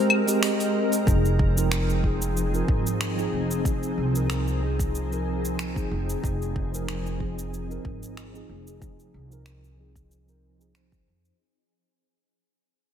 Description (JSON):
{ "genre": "sunset chillout", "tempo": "93 BPM", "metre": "4/4", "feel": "swing 54% on 16ths", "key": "F minor", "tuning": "A4 = 439 Hz", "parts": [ { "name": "mellow tine electric piano", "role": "accompaniment", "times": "0.0-11.4 s", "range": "F3 to Eb5", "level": "-28 LUFS", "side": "moving between left 4 dB and right 3 dB", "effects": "medium stereo tremolo, auto-pan, low-pass filter, tape echo" }, { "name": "shimmering ambient pad", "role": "sustained chords", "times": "0.0-11.4 s", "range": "F3 to Bb4", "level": "-31 LUFS", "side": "equal", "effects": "chorus, built-in reverb" }, { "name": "deep house drum kit", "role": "drums", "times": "0.1-11.4 s", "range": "cabasa, claves, finger snaps, hi-hat", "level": "-28 LUFS", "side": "left 2 dB", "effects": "none" }, { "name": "upright bass", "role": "bass", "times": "1.1-11.3 s", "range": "F1 to F2", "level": "-28 LUFS", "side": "equal", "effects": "tube saturation" }, { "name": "electronic kick drum", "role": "drums", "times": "1.1-11.0 s", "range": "none", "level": "-26 LUFS", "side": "equal", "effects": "none" } ], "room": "light reverb, digital ambience", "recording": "none", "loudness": "-23 LUFS", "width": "side -9 dB against mid", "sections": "0.0-1.1 A section; 1.1-11.4 B section", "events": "break 0.0-1.1; fade-out 1.1-11.4; filter sweep on tine electric piano 1.1-11.4; filter sweep on ambient pad 1.1-11.4", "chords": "0.0 Abmaj9; 1.1 Fm7" }